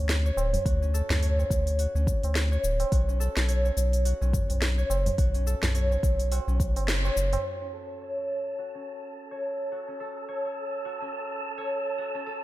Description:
organic downtempo; 106 BPM; 4/4; swing 57% on 16ths; F# minor; A4 = 439 Hz
concert harp; arpeggios; 0.0-12.4 s; C#4 to C#5; -31 LUFS; equal; low-pass filter, ping-pong delay
warm sub bass; bass; 0.0-7.4 s; D1 to D2; -25 LUFS; equal; sidechain pumping
afro-pop drum kit; drums; 0.1-7.4 s; cabasa, hi-hat, snare drum; -32 LUFS; equal; studio reverb
tabla; percussion; 0.4-7.4 s; -36 LUFS; right 2 dB
electronic kick drum; drums; 0.7-6.7 s; -26 LUFS; equal; studio reverb
wind-like tuned noise texture; texture; 8.3-12.4 s; A4 to A5; -37 LUFS; right 1 dB; built-in reverb
light reverb; -25 LUFS; side -16 dB against mid
0.0-7.4 A section; 7.4-12.4 B section
kick drops out 6.9-7.4; band accent 6.9; filter sweep on harp 7.4-12.4
0.0 Dmaj7; 2.9 Bsus2; 7.4 F#m

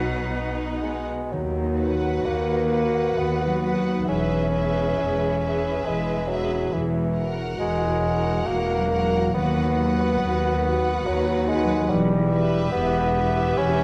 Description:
classical, slow romantic movement for symphony orchestra; 57-73 BPM; 3/4; rubato; B major; A4 = 440 Hz
rich studio violin section; melody; 0.0-13.8 s; E5 to F#5; -37 LUFS; equal
rich studio violin section; second line; 0.0-13.8 s; D#4 to B4; -36 LUFS; equal
warm oboe; second line; 0.0-0.8 s; B4+23c; -37 LUFS; equal
warm studio viola section; accompaniment; 0.0-13.8 s; F#3 to G#4; -34 LUFS; equal
concert harp; arpeggios; 0.0-13.8 s; B2 to E5; -31 LUFS; equal
clear studio cello section; bass; 0.0-13.8 s; D#2 to B2; -32 LUFS; equal
clear studio double bass section; bass; 0.0-13.8 s; E1 to D#2; -30 LUFS; equal
clear bassoon; accompaniment; 0.8-13.8 s; E3 to C#4; -27 LUFS; equal
moderate concert hall reverb, RT60 2.1 s; dark, warm production; -23 LUFS; mono
0.0-1.3 A section; 1.3-13.8 B section
0.0 B; 1.3 B/D#; 4.1 C#m7/E; 6.7 F#7/E; 9.3 B/D#; 11.9 Em

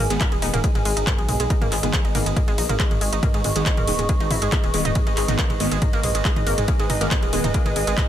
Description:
driving peak-time techno; 139 BPM; 4/4; straight; G# minor; A4 = 437 Hz
analog pluck; riff; 0.0-8.1 s; G#3 to E4; -28 LUFS; right 1 dB; chorus, overdrive, sidechain pumping, ping-pong delay
detuned saw bass; bass; 0.0-7.9 s; D#1 to G#2; -26 LUFS; equal; sidechain pumping
warbly tape-like pad; texture; 0.0-8.1 s; G#4 to C#6; -27 LUFS; right 1 dB; chorus, built-in reverb, sidechain pumping
rave stab; stabs; 0.1-7.4 s; D#3 to B3; -29 LUFS; left 2 dB; chorus, built-in reverb, sidechain pumping, ping-pong delay
techno drum kit; drums; 0.1-8.1 s; handclaps, hi-hat, ride cymbal, toms; -25 LUFS; equal
electronic kick drum; drums; 0.2-8.1 s; -22 LUFS; equal
digital ambience; dense, heavily limited modern master; -18 LUFS; side -11 dB against mid
0.0-8.1 A section
0.0 G#m

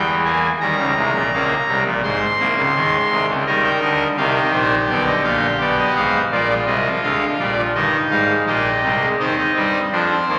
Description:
classical, baroque-style 4-part fugue for pipe organ; 84 BPM; 4/4; straight; A4 = 440 Hz
pipe organ, trumpet; solo; 0.0-10.4 s; G1 to C6; -18 LUFS; equal
wet church reverb, RT60 3.2 s; vinyl crackle; -18 LUFS; mono
0.0-9.2 A section; 9.2-10.4 B section
0.0 Gm6; 0.6 Eb7; 2.0 Ab; 3.5 Eb; 4.9 Ddim7; 6.3 Bb7; 7.7 Eb/G; 9.2 Cm/Eb

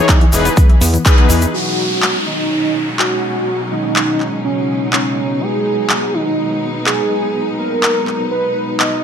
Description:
progressive house; 124 BPM; 4/4; straight; B major; A4 = 440 Hz
analog pluck; arpeggios; 0.0-1.5 s; E3 to D#4; -21 LUFS; left 2 dB; chorus, sidechain pumping, ping-pong delay
soft supersaw; stabs; 0.0-1.3 s; E3 to B4; -18 LUFS; left 4 dB; sidechain pumping, low-pass filter, ping-pong delay
fat analog bass; bass; 0.1-1.5 s; E1 to E2; -16 LUFS; equal; sidechain pumping
big-room dance drum kit; drums; 0.1-8.9 s; handclaps, hi-hat; -17 LUFS; equal; overdrive, sidechain pumping on hats
electronic kick drum; drums; 0.1-1.2 s; -9 LUFS; equal; overdrive
tube shaker; percussion; 0.1-1.5 s; -22 LUFS; left 3 dB
wide unison lead; melody; 1.5-9.0 s; C#4 to D#5; -18 LUFS; right 1 dB; ping-pong delay
rich studio string section; sustained chords; 1.5-9.0 s; B2 to D#4; -21 LUFS; right 1 dB; sidechain pumping
downlifter; sound effects; 1.5-5.4 s; -24 LUFS; equal
moderate digital room reverb, RT60 1.0 s; -13 LUFS; side -8 dB against mid
0.0-1.5 A section; 1.5-9.0 B section
band accent 1.1
0.0 Emaj7; 1.5 B6

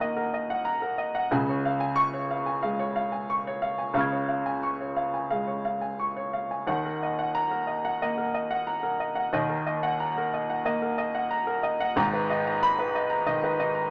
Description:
neoclassical minimalist piano; 91 BPM; 4/4; rubato; Eb minor; A4 = 439 Hz
clear upright piano; solo; 0.0-13.9 s; Ab1 to Ab6; -28 LUFS; equal
moderate studio reverb, RT60 0.9 s; -28 LUFS; mono
0.0-13.9 A section
0.0 Ebm; 1.3 Db; 6.7 Ebm; 12.0 Abmadd9

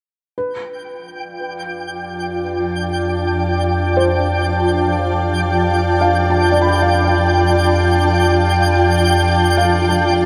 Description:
ambient; 59 BPM; 4/4; straight; F lydian; A4 = 443 Hz
granular cloud pad; sustained chords; 1.4-10.3 s; F4 to A5; -19 LUFS; equal; built-in reverb
felt-muted upright piano; arpeggios; 0.4-10.3 s; B4 to B5; -26 LUFS; equal; delay
deep rumbling drone; bass; 2.2-10.3 s; F2; -21 LUFS; equal; built-in reverb
twinkling granular texture; texture; 0.8-10.3 s; G5 to G6; -25 LUFS; equal; built-in reverb
wet cathedral reverb, RT60 6.2 s; in a vast, echoing space; -16 LUFS; mono
0.4-10.3 A section
0.4 F69

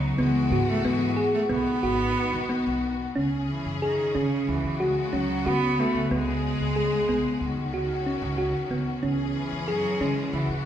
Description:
contemporary instrumental, chamber music in an uneven meter; 184 BPM (eighths); 9/8; straight; C# minor; A4 = 442 Hz
clear cello; melody; 0.0-10.5 s; C#3 to B3; -30 LUFS; right 1 dB
bright symphonic string section; sustained chords; 0.0-10.7 s; C#3 to G#4; -32 LUFS; left 4 dB
thumb-piano-like synth pluck; arpeggios; 0.0-10.5 s; B3 to G#4; -26 LUFS; equal; chorus
upright bass; bass; 0.0-10.7 s; G#1 to C#3; -30 LUFS; equal
wet recital hall reverb, RT60 1.6 s; recorded in a church or concert hall; -23 LUFS; side -10 dB against mid
0.0-3.2 A section; 3.2-10.7 B section
0.2 Eadd9/C#; 1.5 B; 3.2 C#5; 4.5 F#sus4/C#; 6.1 G#madd11; 7.4 C#9sus4; 9.0 C#m

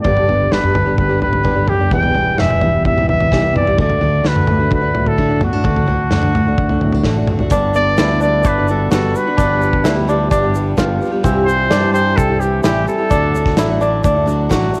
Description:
indie folk with a building arrangement; 129 BPM; 4/4; straight; G major; A4 = 440 Hz
warm trumpet; melody; 0.0-13.8 s; F#4 to G5; -20 LUFS; equal; cassette tape
fingerpicked steel-string acoustic guitar; accompaniment; 0.0-9.4 s; E2 to G4; -25 LUFS; equal
picked steel-string acoustic guitar; accompaniment; 0.0-14.8 s; E2 to G4; -24 LUFS; equal
loose indie drum kit; drums; 0.0-14.6 s; hi-hat, kick drum, snare drum, toms; -21 LUFS; equal; cassette tape
fingered electric bass; bass; 0.1-14.7 s; E1 to D3; -22 LUFS; equal
kora; arpeggios; 7.5-14.8 s; C4 to F#4; -21 LUFS; equal
egg shaker; percussion; 7.5-14.8 s; -43 LUFS; equal
light reverb, small room ambience; home recording on cassette; -15 LUFS; mono
0.0-7.5 A section; 7.5-14.8 B section
0.0 G; 1.9 Em; 3.8 D; 7.5 Gmaj7; 9.4 G7; 11.2 C; 13.1 D

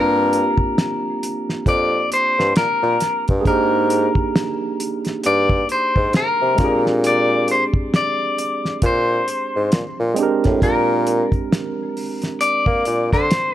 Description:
R&B, neo-soul; 67 BPM; 4/4; swing 60% on 16ths; A4 = 440 Hz
electric guitar at the edge of break-up; melody; 0.0-13.5 s; Bb4 to D5; -20 LUFS; left 2 dB
barky tine electric piano; accompaniment; 0.0-13.5 s; Ab3 to Bb4; -23 LUFS; moving between equal and right 6 dB; overdrive, auto-pan
clear bassoon; bass; 0.0-13.3 s; F2 to Bb3; -20 LUFS; equal
cloth-damped thuddy drum kit; drums; 0.3-13.5 s; hi-hat, kick drum, snare drum; -20 LUFS; equal
small room reverb; -16 LUFS; side -12 dB against mid
0.0-13.5 A section
0.0 Gm7; 3.5 Abmaj7sus2; 6.6 Bb13

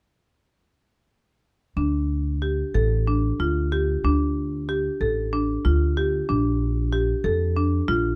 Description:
contemporary instrumental, contemporary; 187 BPM (eighths); 7/8; straight; D minor; A4 = 438 Hz
marimba with medium hard mallets; arpeggios; 1.8-8.1 s; D4 to A4; -26 LUFS; equal
upright bass; bass; 1.8-8.2 s; A1 to F2; -26 LUFS; equal
light reverb; dark, warm production; -23 LUFS; mono
1.8-8.2 A section
1.8 D5; 6.3 Bb

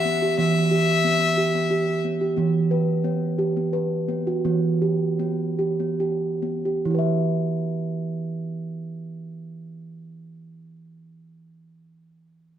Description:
world meditative, meditative tuned percussion; 67-90 BPM; 3/4; straight; E minor; A4 = 437 Hz
dark fiddle; melody; 0.0-2.0 s; E5; -23 LUFS; left 5 dB; diffuse ambient delay
steel tongue drum; arpeggios; 0.0-10.6 s; E3 to E5; -22 LUFS; right 2 dB
wet scoring stage reverb, RT60 1.5 s, small room ambience; -21 LUFS; side -10 dB against mid
0.0-6.9 A section; 6.9-12.2 B section
slowing down 2.4-6.9
0.0 Em; 2.4 B5/E; 4.5 Em

